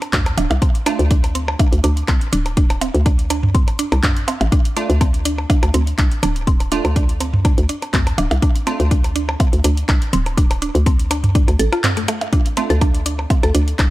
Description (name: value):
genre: minimal techno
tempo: 123 BPM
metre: 4/4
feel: swing 54% on 16ths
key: D minor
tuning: A4 = 438 Hz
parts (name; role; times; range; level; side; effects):
- booming analog drum machine; drums; 0.0-13.9 s; handclaps, hi-hat; -24 LUFS; equal; none
- electronic percussion blips and toms; percussion; 0.0-13.9 s; none; -24 LUFS; right 1 dB; overdrive, digital delay
- mallet-like synth pluck; riff; 0.1-13.8 s; A3 to A4; -24 LUFS; right 1 dB; chorus, phaser, sidechain pumping, tape echo
- hollow knocking FM bass; bass; 0.1-13.9 s; D1 to D2; -18 LUFS; equal; sidechain pumping
- electronic kick drum; drums; 0.1-13.9 s; none; -16 LUFS; equal; none
- wavetable chord stab; stabs; 0.9-1.0, 4.8-8.8, 12.6-12.7 s; A3 to F4; -26 LUFS; right 3 dB; digital delay
room: little or no reverb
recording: dark, warm production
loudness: -14 LUFS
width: side -17 dB against mid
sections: 0.0-13.9 A section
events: break 11.8-12.3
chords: none